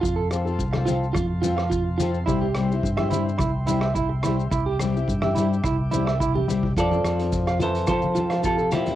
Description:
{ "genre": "highlife guitar band", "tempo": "107 BPM", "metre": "4/4", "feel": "straight", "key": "F major", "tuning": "A4 = 440 Hz", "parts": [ { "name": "mellow tonewheel organ", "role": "sustained chords", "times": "0.0-6.7 s", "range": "E5 to D6", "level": "-38 LUFS", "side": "equal", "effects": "slow rotary speaker, plate reverb" }, { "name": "electric guitar at the edge of break-up", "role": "arpeggios", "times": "0.0-8.8 s", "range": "E4 to F5", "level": "-27 LUFS", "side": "right 5 dB", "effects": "analog delay, plate reverb" }, { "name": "fingered electric bass", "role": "bass", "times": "0.0-9.0 s", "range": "C2 to F3", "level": "-26 LUFS", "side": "equal", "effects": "none" }, { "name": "vintage drum kit", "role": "drums", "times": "0.0-9.0 s", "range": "hi-hat, kick drum, rim click", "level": "-30 LUFS", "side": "equal", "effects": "vintage 12-bit sampler grit" }, { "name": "maracas", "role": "percussion", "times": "0.1-8.9 s", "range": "none", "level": "-38 LUFS", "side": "left 7 dB", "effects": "none" }, { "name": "picked steel-string acoustic guitar", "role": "accompaniment", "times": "0.3-8.9 s", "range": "F3 to A4", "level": "-28 LUFS", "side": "left 6 dB", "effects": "plate reverb" }, { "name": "congas", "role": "percussion", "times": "0.7-9.0 s", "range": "none", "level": "-31 LUFS", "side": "left 5 dB", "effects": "none" }, { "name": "semi-hollow electric guitar", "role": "melody", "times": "6.8-9.0 s", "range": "E4 to D5", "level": "-25 LUFS", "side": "right 1 dB", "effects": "plate reverb" }, { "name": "growling tenor saxophone", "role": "second line", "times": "6.8-9.0 s", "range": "Bb2 to F3", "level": "-29 LUFS", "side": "left 6 dB", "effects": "plate reverb" } ], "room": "light reverb", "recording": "home recording on cassette", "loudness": "-21 LUFS", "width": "side -13 dB against mid", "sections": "0.0-6.8 A section; 6.8-9.0 B section", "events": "none", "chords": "0.0 F; 2.3 C; 6.8 F" }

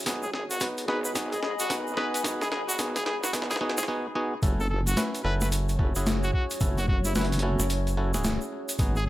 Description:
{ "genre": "glitch hop", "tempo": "110 BPM", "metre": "4/4", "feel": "swing 62% on 16ths", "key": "F# dorian", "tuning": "A4 = 440 Hz", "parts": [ { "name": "clav", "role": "stabs", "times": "0.0-9.0 s", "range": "B3 to B4", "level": "-32 LUFS", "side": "equal", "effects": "sidechain pumping, low-pass filter, tape echo" }, { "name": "boom bap sampler-style drum kit", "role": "drums", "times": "0.0-8.9 s", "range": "hi-hat, snare drum", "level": "-32 LUFS", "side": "left 1 dB", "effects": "overdrive, high-pass filter on snare, studio reverb, high-pass filter on hats" }, { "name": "warbly tape-like pad", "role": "texture", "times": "0.0-9.1 s", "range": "F#4 to B5", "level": "-37 LUFS", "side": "left 1 dB", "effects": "chorus, built-in reverb, sidechain pumping" }, { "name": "wobble bass", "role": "bass", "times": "0.1-9.1 s", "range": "F#1 to G#1", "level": "-30 LUFS", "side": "equal", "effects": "chorus, tube saturation, high-pass filter" }, { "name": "electronic kick drum", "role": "drums", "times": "0.1-8.9 s", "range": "none", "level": "-27 LUFS", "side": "equal", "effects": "overdrive, high-pass filter on kick, studio reverb" }, { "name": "egg shaker", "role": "percussion", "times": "0.1-9.0 s", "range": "none", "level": "-35 LUFS", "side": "right 1 dB", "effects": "none" }, { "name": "bright trumpet", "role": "melody", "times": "0.2-9.1 s", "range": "E4 to B4", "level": "-33 LUFS", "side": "equal", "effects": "tape echo" }, { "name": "rubbery square bass", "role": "bass", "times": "5.2-8.4 s", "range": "F#1", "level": "-27 LUFS", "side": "equal", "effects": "none" } ], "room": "light reverb, digital ambience", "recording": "none", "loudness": "-25 LUFS", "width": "side -16 dB against mid", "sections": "0.0-4.4 A section; 4.4-9.1 B section", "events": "build-up 0.0-4.4; drum fill 0.0-3.9; break 3.9-4.4; drop 4.4-9.1", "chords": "0.1 G#m7; 4.4 F#m7" }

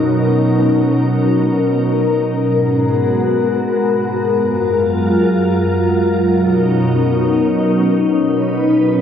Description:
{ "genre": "hip hop", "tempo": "free time", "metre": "none", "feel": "none", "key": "B lydian", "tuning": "A4 = 440 Hz", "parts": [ { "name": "glassy FM pad", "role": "solo", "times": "0.0-9.0 s", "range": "F#2 to B4", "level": "-13 LUFS", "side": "left 1 dB", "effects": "ensemble chorus, built-in reverb" } ], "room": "wet lush hall reverb, RT60 2.6 s", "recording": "none", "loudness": "-13 LUFS", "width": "side -8 dB against mid", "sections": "0.0-9.0 A section", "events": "none", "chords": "0.0 Bmaj7; 2.4 G#m9; 4.3 F#maj7; 6.2 Bmaj7" }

